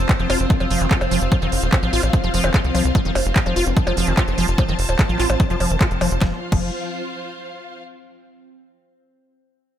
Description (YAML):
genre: psychedelic trance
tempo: 147 BPM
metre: 4/4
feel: straight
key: F major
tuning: A4 = 441 Hz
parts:
  - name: evolving wavetable pad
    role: sustained chords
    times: 0.0-6.2 s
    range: C4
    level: -30 LUFS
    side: left 2 dB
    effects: chorus, built-in reverb, phaser, sidechain pumping
  - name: tight sequencer bass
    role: bass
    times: 0.0-6.7 s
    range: Eb1 to C2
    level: -22 LUFS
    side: equal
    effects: tube saturation
  - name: clear symphonic string section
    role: texture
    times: 0.0-7.8 s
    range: F4 to A5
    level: -28 LUFS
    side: equal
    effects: sidechain pumping
  - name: electronic kick drum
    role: drums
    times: 0.1-6.6 s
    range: none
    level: -18 LUFS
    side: equal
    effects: none
  - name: techno drum kit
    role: drums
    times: 0.1-6.6 s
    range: crash cymbal, handclaps, hi-hat, percussion blips, snare drum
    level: -25 LUFS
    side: right 1 dB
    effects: none
  - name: liquid acid bass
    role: riff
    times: 0.2-6.7 s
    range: Eb3 to F4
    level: -25 LUFS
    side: moving between left 5 dB and right 4 dB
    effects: chorus, auto-pan, sidechain pumping, ping-pong delay
  - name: formant-sweep wobble bass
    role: second line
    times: 0.4-5.4 s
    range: F3 to C4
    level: -35 LUFS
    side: left 3 dB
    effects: none
room: light reverb, digital ambience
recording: none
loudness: -16 LUFS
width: side -10 dB against mid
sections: 0.0-6.2 A section; 6.2-7.8 B section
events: drop 0.0-6.2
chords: 0.0 F5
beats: 0.09 0.50 0.91 | 1.32 1.73 2.13 2.54 | 2.95 3.36 3.77 4.17 | 4.58 4.99 5.40 5.81 | 6.21 6.62 7.03 7.44